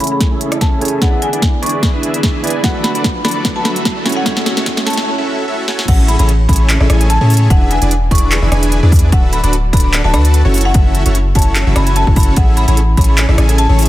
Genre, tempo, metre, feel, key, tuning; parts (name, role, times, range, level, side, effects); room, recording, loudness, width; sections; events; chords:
future bass; 148 BPM; 4/4; swing 54% on 16ths, half-time; A major; A4 = 440 Hz
marimba with medium hard mallets; melody; 0.0-13.7 s; F#5 to C#6; -21 LUFS; left 1 dB; sidechain pumping, low-pass filter, dub echo
barky tine electric piano; accompaniment; 0.0-5.9 s; A3 to D5; -23 LUFS; right 3 dB; overdrive, phaser, sidechain pumping, digital delay
dense compressed supersaw; riff; 0.0-13.9 s; C#4 to A5; -18 LUFS; equal; cassette tape, sidechain pumping, low-pass filter
trap drum kit; drums; 0.0-13.9 s; crash cymbal, handclaps, hi-hat, rim click, snare drum; -18 LUFS; equal; overdrive
riser; sound effects; 2.3-5.1 s; -28 LUFS; right 1 dB
electronic kick drum; drums; 0.2-13.1 s; -13 LUFS; equal; overdrive
long sustained 808-style bass; bass; 5.9-13.9 s; D1 to A2; -12 LUFS; equal; sidechain pumping
light reverb; dense, heavily limited modern master, high-pass filter, faint mains hum; -10 LUFS; side -15 dB against mid
0.0-5.9 A section; 5.9-13.9 B section
build-up 0.0-5.9; drum fill 0.0-5.1, 5.7; filter sweep on supersaw synth 0.0-5.9; filter sweep 0.0-5.9; riser 2.3-5.1; break 5.1-5.9; drop 5.9-13.9
0.0 Amaj7; 1.0 E7; 2.6 D69; 4.1 F#m7; 5.9 Amaj7; 7.5 E7; 9.1 D69; 10.5 F#m7; 12.4 Amaj7